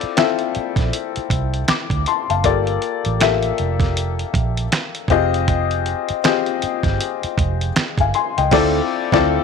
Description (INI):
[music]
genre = R&B, neo-soul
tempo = 79 BPM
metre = 4/4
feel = swing 60% on 16ths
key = D minor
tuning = A4 = 439 Hz
[part]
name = warm upright piano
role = accompaniment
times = 0.0-9.4 s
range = Bb3 to D6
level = -19 LUFS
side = left 11 dB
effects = none
[part]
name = vintage muted fingered electric bass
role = bass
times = 0.0-9.4 s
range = F1 to D2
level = -22 LUFS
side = right 3 dB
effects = none
[part]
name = dusty soul sampler-style drum kit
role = drums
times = 0.0-9.3 s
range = crash cymbal, finger snaps, hi-hat, kick drum, snare drum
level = -21 LUFS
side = right 3 dB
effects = none
[part]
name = nylon-string guitar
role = second line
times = 8.5-9.4 s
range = C4 to A4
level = -22 LUFS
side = right 15 dB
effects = none
[sound]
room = light reverb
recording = 1960s-style stereo with parts hard left and right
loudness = -17 LUFS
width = side -5 dB against mid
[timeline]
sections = 0.0-9.4 A section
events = band accent 8.5-9.4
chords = 0.0 Dm9; 2.4 Gm9; 5.1 Fm9; 8.5 Dm9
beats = 0.16 0.92 1.68 | 2.44 3.20 3.96 4.72 | 5.48 6.24 7.00 7.76 | 8.52 9.28